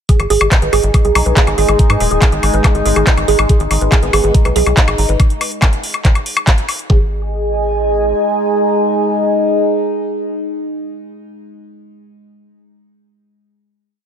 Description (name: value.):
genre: psychedelic trance.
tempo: 141 BPM.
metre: 4/4.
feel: straight.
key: G# minor.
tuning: A4 = 439 Hz.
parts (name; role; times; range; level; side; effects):
overtone-sweeping drone; sustained chords; 0.9-11.1 s; G#3 to D#4; -20 LUFS; left 1 dB; chorus, built-in reverb, sidechain pumping.
woody wave-folded pluck; riff; 0.1-7.1 s; G#4 to A#5; -18 LUFS; moving between left 4 dB and right 6 dB; chorus, auto-pan, sidechain pumping, tape echo.
drum and bass drum kit; drums; 0.1-6.9 s; handclaps, hi-hat, woodblock; -17 LUFS; left 2 dB; none.
electronic kick drum; drums; 0.1-7.0 s; none; -11 LUFS; equal; none.
airy breathy pad; texture; 0.1-11.1 s; G#4 to G#5; -20 LUFS; right 2 dB; chorus, sidechain pumping.
tight sequencer bass; bass; 0.2-8.1 s; D#1 to G#2; -17 LUFS; equal; none.
formant-sweep wobble bass; second line; 4.0-5.2 s; B3 to D#4; -27 LUFS; left 2 dB; wide subtle chorus, sidechain pumping, high-pass filter, tape echo.
room: light reverb.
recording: none.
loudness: -11 LUFS.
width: side -8 dB against mid.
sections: 0.1-6.9 groove; 6.9-10.3 final chord.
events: none.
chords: 0.1 G#5.